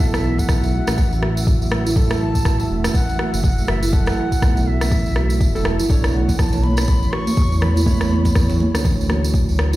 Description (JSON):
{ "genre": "afro house", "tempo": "122 BPM", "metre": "4/4", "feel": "swing 58% on 16ths", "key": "F# minor", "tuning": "A4 = 441 Hz", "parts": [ { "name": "bright reedy bansuri", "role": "melody", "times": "0.0-8.6 s", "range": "E5 to C#6", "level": "-30 LUFS", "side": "equal", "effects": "digital delay" }, { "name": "dark analog pad", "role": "sustained chords", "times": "0.0-9.8 s", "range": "A3 to E5", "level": "-28 LUFS", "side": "right 2 dB", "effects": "chorus, sidechain pumping" }, { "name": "kalimba", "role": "arpeggios", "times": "0.0-9.8 s", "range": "C#3 to F#4", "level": "-25 LUFS", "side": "right 2 dB", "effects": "sidechain pumping, digital delay" }, { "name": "deep mellow chord stab", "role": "stabs", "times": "0.0-9.3 s", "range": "F#3 to C#5", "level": "-30 LUFS", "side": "right 3 dB", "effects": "chorus, sidechain pumping, digital delay" }, { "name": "smooth synth bass", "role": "bass", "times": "0.0-9.8 s", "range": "E1 to E2", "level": "-20 LUFS", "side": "equal", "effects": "sidechain pumping" }, { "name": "electronic kick drum", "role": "drums", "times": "0.0-9.5 s", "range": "none", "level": "-18 LUFS", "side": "equal", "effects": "small room ambience" }, { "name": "tambourine", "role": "percussion", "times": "0.0-9.8 s", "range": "none", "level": "-32 LUFS", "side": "right 3 dB", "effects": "none" }, { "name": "electronic rim click", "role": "drums", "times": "0.1-9.7 s", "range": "none", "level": "-28 LUFS", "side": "equal", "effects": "small room ambience" }, { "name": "congas", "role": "percussion", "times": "6.3-9.2 s", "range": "none", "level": "-26 LUFS", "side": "right 1 dB", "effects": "none" } ], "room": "light reverb, small room reverb", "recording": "played on a big sound system in a bare room, large studio reverb", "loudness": "-16 LUFS", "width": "side -16 dB against mid", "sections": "0.0-9.8 A section", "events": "none", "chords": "0.0 F#m7; 5.9 Bm9" }